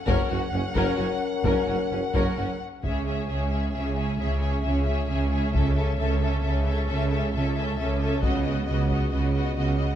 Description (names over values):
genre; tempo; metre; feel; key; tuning
cinematic, epic orchestral film score; 133 BPM; 3/4; straight; C# minor; A4 = 440 Hz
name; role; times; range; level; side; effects
dark symphonic violin section; melody; 0.0-10.0 s; D#5 to F#5; -34 LUFS; left 5 dB; none
warm symphonic violin section; second line; 0.1-10.0 s; C#4 to A#4; -32 LUFS; left 3 dB; none
rich symphonic viola section; accompaniment; 0.1-10.0 s; B3 to C#4; -34 LUFS; right 1 dB; none
dark French horn section; sustained chords; 0.1-2.6 s; C#4 to A#4; -30 LUFS; left 6 dB; none
clear symphonic double bass section; bass; 0.1-10.0 s; F#1 to C#2; -27 LUFS; right 1 dB; none
clear tuba; bass; 0.1-2.5 s; F#1; -32 LUFS; right 4 dB; none
rich symphonic cello section; bass; 0.1-10.0 s; F#2 to C#3; -29 LUFS; right 3 dB; none
taiko ensemble; drums; 0.1-9.1 s; none; -29 LUFS; left 1 dB; none
room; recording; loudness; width
moderate scoring stage reverb, RT60 1.6 s; dark, warm production; -23 LUFS; side -10 dB against mid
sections
0.0-2.8 A section; 2.8-10.0 B section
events
none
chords
0.1 F#; 2.8 C#m; 8.2 B/C#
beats
| 0.08 0.53 0.98 | 1.44 1.91 2.37 | 2.83 3.28 3.73 | 4.18 4.63 5.08 | 5.54 5.99 6.43 | 6.88 7.33 7.78 | 8.22 8.67 9.12 | 9.56